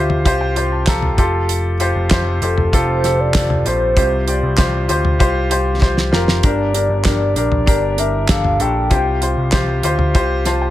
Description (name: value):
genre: piano-driven pop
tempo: 97 BPM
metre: 4/4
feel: straight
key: unclear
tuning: A4 = 440 Hz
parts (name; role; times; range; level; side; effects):
- warm concert grand piano; accompaniment; 0.0-10.7 s; G2 to C6; -19 LUFS; left 2 dB; none
- overdriven picked electric bass; bass; 0.0-10.7 s; F1 to D2; -20 LUFS; equal; none
- damped 70s drum kit; drums; 0.1-10.6 s; handclaps, hi-hat, kick drum, snare drum, toms; -17 LUFS; equal; none
- hollow clarinet-like synth lead; melody; 2.4-9.5 s; A4 to G5; -20 LUFS; equal; chorus
room: light reverb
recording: none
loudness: -14 LUFS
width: side -14 dB against mid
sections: 0.0-10.7 A section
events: grand piano fill 0.0-1.5, 10.1-10.7; drum fill 5.8-6.4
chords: 0.0 Csus4; 1.2 Fadd9; 4.0 Csus4; 6.4 Gm; 8.9 Csus4